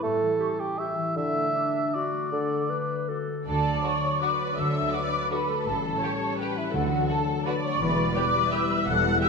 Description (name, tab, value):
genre	classical, orchestral ballroom waltz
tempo	148-180 BPM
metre	3/4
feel	rubato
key	D major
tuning	A4 = 440 Hz
part	mellow cor anglais	second line	0.0-3.1 s	G4 to E5	-28 LUFS	right 2 dB	none
part	mellow bassoon	accompaniment	0.0-2.6 s	D3 to A3	-31 LUFS	right 2 dB	none
part	concert harp	arpeggios	0.0-9.3 s	A2 to A4	-33 LUFS	left 6 dB	none
part	clear clarinet	second line	0.4-3.5 s	D4 to B4	-33 LUFS	left 3 dB	none
part	mellow large flute ensemble	second line	0.4-9.3 s	E5 to F#6	-28 LUFS	left 1 dB	none
part	warm symphonic violin section	second line	3.5-9.3 s	E4 to F#5	-34 LUFS	left 1 dB	none
part	rich symphonic viola section	accompaniment	3.5-9.3 s	G4 to D5	-32 LUFS	right 1 dB	none
part	mellow French horn section	sustained chords	3.5-9.3 s	F#3 to E4	-34 LUFS	left 3 dB	none
part	rich studio double bass section	bass	3.5-9.2 s	E1 to D2	-33 LUFS	right 4 dB	none
part	rich symphonic cello section	bass	3.5-9.2 s	D2 to D3	-34 LUFS	right 3 dB	none
part	rich symphonic violin section	melody	3.8-9.3 s	F#4 to G4	-38 LUFS	left 2 dB	none
part	timpani	percussion	6.7-7.2 s	D3	-34 LUFS	right 4 dB	none
room	wet scoring stage reverb, RT60 1.6 s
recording	minimal, uncompressed stereo recording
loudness	-24 LUFS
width	side -4 dB against mid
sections	0.0-3.5 A section; 3.5-9.3 A section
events	none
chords	0.0 A7; 1.2 D; 5.7 A7; 6.7 D; 7.8 Em